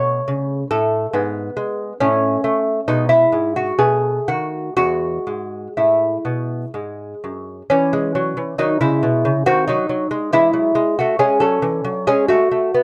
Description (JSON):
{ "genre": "classical, baroque-style dance for lute", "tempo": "60-71 BPM", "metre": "3/4", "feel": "rubato", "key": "E major, C# minor from 7.7 s", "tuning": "A4 = 440 Hz", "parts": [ { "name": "lute", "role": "solo", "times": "0.0-12.8 s", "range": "E2 to C#5", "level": "-18 LUFS", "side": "equal", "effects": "none" } ], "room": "little or no reverb", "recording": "dry, close 1970s-style studio recording", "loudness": "-18 LUFS", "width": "mono", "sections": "0.0-7.7 A section; 7.7-12.8 A section", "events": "none", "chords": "0.0 A; 1.1 G#m; 2.0 N.C.; 2.9 E/B; 3.8 B7; 4.8 E; 7.7 C#m/E; 9.5 G#7/D#; 10.3 C#m/E" }